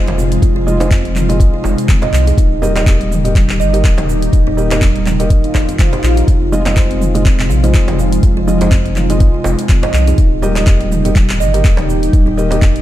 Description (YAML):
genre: afro house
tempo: 123 BPM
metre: 4/4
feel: swing 56% on 16ths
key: F minor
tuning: A4 = 438 Hz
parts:
  - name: ethereal airy pad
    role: sustained chords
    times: 0.0-12.8 s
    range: Bb2 to G4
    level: -20 LUFS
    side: equal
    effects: ensemble chorus, built-in reverb, sidechain pumping
  - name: felt-muted upright piano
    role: stabs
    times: 0.0-12.6 s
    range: Ab3 to Eb5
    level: -21 LUFS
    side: right 1 dB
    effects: sidechain pumping, ping-pong delay
  - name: round analog bass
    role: bass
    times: 0.0-12.8 s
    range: Eb1 to C2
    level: -16 LUFS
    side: equal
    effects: sidechain pumping
  - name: buzzing kalimba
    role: arpeggios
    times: 0.1-12.7 s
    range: G3 to F5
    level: -20 LUFS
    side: right 2 dB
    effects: sidechain pumping, ping-pong delay
  - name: deep house drum kit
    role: drums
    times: 0.1-12.8 s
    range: cabasa, handclaps, hi-hat, toms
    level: -22 LUFS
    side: equal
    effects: small room ambience
  - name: djembe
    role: percussion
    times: 0.1-12.7 s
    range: none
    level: -24 LUFS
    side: right 1 dB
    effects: none
  - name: electronic kick drum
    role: drums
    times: 0.4-12.7 s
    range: none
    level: -11 LUFS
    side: equal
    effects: small room ambience
  - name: swell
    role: sound effects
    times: 5.5-6.3 s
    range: none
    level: -26 LUFS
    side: right 1 dB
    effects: none
room: light reverb, digital ambience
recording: dark, warm production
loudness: -10 LUFS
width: side -13 dB against mid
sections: 0.0-12.8 A section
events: swell 5.5-6.3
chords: 0.0 Fm7; 2.4 Eb; 6.3 Fm7; 10.2 Eb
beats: | 0.42 0.91 1.40 1.89 | 2.38 2.86 3.35 3.84 | 4.33 4.81 5.30 5.79 | 6.28 6.76 7.25 7.74 | 8.23 8.72 9.20 9.69 | 10.18 10.67 11.15 11.64 | 12.13 12.62